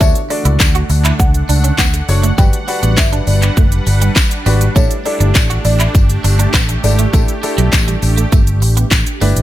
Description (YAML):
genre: dance-pop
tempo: 101 BPM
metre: 4/4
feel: straight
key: unclear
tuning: A4 = 440 Hz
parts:
  - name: buzzing marimba with soft mallets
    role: melody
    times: 0.0-8.9 s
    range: C#5 to G5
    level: -24 LUFS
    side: left 1 dB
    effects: dub echo
  - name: clear concert grand piano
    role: accompaniment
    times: 0.0-9.4 s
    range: D4 to D5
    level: -23 LUFS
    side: left 2 dB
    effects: sidechain pumping
  - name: sweeping resonant pad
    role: sustained chords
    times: 0.0-9.4 s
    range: D3 to F#5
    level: -22 LUFS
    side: right 1 dB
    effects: chorus, sidechain pumping
  - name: electric guitar at the edge of break-up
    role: riff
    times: 0.0-9.3 s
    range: F#3 to F#4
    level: -24 LUFS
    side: right 9 dB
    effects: ensemble chorus
  - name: vintage muted fingered electric bass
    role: bass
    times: 0.0-9.4 s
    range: F#1 to D2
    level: -13 LUFS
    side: equal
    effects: sidechain pumping
  - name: house drum kit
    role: drums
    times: 0.0-9.4 s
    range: handclaps, hi-hat, kick drum, shaker, snare drum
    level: -14 LUFS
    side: equal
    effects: none
  - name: tambourine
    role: percussion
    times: 0.0-9.4 s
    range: none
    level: -27 LUFS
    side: left 14 dB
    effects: none
room: little or no reverb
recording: none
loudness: -10 LUFS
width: side -14 dB against mid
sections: 0.0-9.4 A section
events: none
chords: 0.0 Dmaj7; 2.4 Gmaj7; 4.8 A7sus4